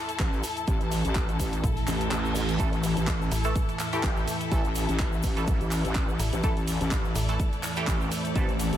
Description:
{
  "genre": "bass house",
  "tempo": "125 BPM",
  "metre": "4/4",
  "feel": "swing 55% on 16ths",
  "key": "A minor",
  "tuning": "A4 = 439 Hz",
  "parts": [
    { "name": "deep dark ambient pad", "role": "sustained chords", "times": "0.1-8.8 s", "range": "E3 to E5", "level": "-34 LUFS", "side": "right 1 dB", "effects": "chorus, built-in reverb, sidechain pumping" },
    { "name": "clear studio string section", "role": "texture", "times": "0.0-8.8 s", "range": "E4 to A5", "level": "-35 LUFS", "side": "left 3 dB", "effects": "sidechain pumping" },
    { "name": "house drum kit", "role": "drums", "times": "0.1-8.8 s", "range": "handclaps, hi-hat, ride cymbal", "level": "-35 LUFS", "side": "right 2 dB", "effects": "none" },
    { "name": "egg shaker", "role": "percussion", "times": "0.1-8.8 s", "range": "none", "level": "-42 LUFS", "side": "left 3 dB", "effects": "none" },
    { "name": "wobble bass", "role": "bass", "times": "0.2-8.8 s", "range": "A1", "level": "-28 LUFS", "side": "equal", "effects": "chorus, overdrive, sidechain pumping" },
    { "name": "electronic kick drum", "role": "drums", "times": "0.2-8.5 s", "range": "none", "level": "-27 LUFS", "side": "equal", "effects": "none" },
    { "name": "metallic FM bass", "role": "bass", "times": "1.6-7.4 s", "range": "A1 to Bb1", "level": "-28 LUFS", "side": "equal", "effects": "sidechain pumping" },
    { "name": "reverse cymbal", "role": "sound effects", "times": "1.8-2.6 s", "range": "none", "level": "-40 LUFS", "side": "right 5 dB", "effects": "none" },
    { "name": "band-passed chord stab", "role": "stabs", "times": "2.6-8.5 s", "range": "E3 to A4", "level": "-34 LUFS", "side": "right 1 dB", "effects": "phaser, sidechain pumping, tape echo" }
  ],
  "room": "light reverb, digital ambience",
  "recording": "none",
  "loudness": "-24 LUFS",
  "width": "side -11 dB against mid",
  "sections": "0.0-8.8 A section",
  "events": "reverse cymbal 1.8-2.6; kick drops out 2.1-2.6",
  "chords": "0.0 A5"
}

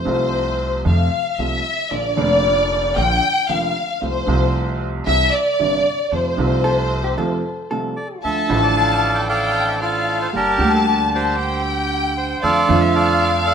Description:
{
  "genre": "tango",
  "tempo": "114 BPM",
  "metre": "4/4",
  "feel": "rubato",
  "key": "F major, D minor from 8.2 s",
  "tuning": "A4 = 435 Hz",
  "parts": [
    { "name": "warm studio violin section", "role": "second line", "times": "0.0-13.5 s", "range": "C5 to A5", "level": "-20 LUFS", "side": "left 2 dB", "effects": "none" },
    { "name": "clear upright piano", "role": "accompaniment", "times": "0.0-13.5 s", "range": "F1 to G4", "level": "-23 LUFS", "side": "right 4 dB", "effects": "none" },
    { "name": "upright bass", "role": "bass", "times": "0.0-13.5 s", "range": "F1 to F2", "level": "-23 LUFS", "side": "equal", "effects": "none" },
    { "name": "vintage hollow-body jazz guitar", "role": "second line", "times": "6.6-8.2 s", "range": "G4 to A4", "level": "-26 LUFS", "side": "left 1 dB", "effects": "none" },
    { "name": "bandoneon", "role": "melody", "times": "8.0-13.5 s", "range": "D4 to G5", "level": "-19 LUFS", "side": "right 1 dB", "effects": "none" }
  ],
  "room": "moderate large studio reverb, RT60 1.1 s",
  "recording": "minimal, uncompressed stereo recording",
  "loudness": "-16 LUFS",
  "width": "side -7 dB against mid",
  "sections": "0.0-8.2 A section; 8.2-13.5 B section",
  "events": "violin section solo 0.0-8.2; break 7.2-8.2",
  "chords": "0.0 F; 1.9 Bb; 4.0 F/C; 5.1 C; 6.1 F; 8.2 Dm; 10.3 Gm; 12.4 Dm/F"
}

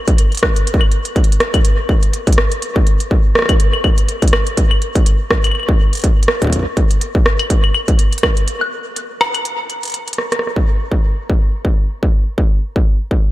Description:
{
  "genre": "IDM",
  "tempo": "123 BPM",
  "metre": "4/4",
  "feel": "swing 56% on 16ths",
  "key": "none",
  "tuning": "none",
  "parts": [
    { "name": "electronic kick drum", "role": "drums", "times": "0.1-13.2 s", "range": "none", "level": "-13 LUFS", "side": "equal", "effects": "distortion" },
    { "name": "industrial drum kit", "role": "drums", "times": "0.1-10.6 s", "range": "claves, hi-hat, rim click", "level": "-18 LUFS", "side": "equal", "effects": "low-pass filter on perc, low-pass filter on hats, low-pass filter on snare, low-pass filter on room, diffuse ambient delay" }
  ],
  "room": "light reverb",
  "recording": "none",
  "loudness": "-13 LUFS",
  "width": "side -16 dB against mid",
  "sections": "0.0-10.4 A section; 10.4-13.3 B section",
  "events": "break 8.5-10.4; drum fill 10.2; filter sweep on drum 10.4-13.3",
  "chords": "none"
}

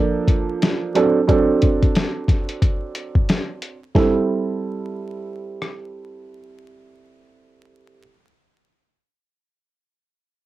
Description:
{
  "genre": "hip hop, boom-bap hip-hop",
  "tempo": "90 BPM",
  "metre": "4/4",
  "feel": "swing 61% on 16ths",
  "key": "A dorian",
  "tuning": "A4 = 442 Hz",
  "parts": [
    { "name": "dark upright piano", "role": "accompaniment", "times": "0.0-8.0 s", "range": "F3 to A4", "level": "-20 LUFS", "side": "right 4 dB", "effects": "cassette tape, low-pass filter" },
    { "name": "lo-fi sampler-style drum kit", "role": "drums", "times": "0.3-5.8 s", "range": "hi-hat, kick drum, rim click, snare drum", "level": "-18 LUFS", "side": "left 1 dB", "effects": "none" }
  ],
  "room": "light reverb",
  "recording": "home recording on cassette, vinyl crackle",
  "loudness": "-17 LUFS",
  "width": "side -15 dB against mid",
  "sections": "0.0-4.0 A section; 4.0-6.6 B section",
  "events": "filter sweep on upright piano 0.0-4.0",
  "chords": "0.0 Bbmaj7; 0.9 D7; 4.0 Am7"
}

